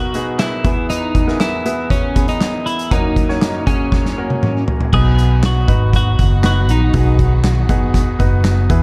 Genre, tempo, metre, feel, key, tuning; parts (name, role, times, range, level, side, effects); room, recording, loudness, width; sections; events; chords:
piano-driven pop; 119 BPM; 4/4; straight; B major; A4 = 440 Hz
twelve-string electric guitar; melody; 0.0-7.2 s; C#4 to G#4; -24 LUFS; equal
bright grand piano; accompaniment; 0.0-8.8 s; F#1 to C#5; -24 LUFS; equal
loose indie drum kit; drums; 0.1-8.8 s; crash cymbal, handclaps, hi-hat, kick drum, snare drum, toms; -20 LUFS; equal
warm studio string section; sustained chords; 4.9-8.8 s; D#3 to G#4; -30 LUFS; equal
vintage muted fingered electric bass; bass; 4.9-8.8 s; F#1 to E2; -16 LUFS; equal
small room ambience; echo-heavy mix; -16 LUFS; mono
0.0-4.9 A section; 4.9-8.8 B section
drum fill 3.9-4.9
0.0 B; 0.6 E; 2.9 F#; 4.9 B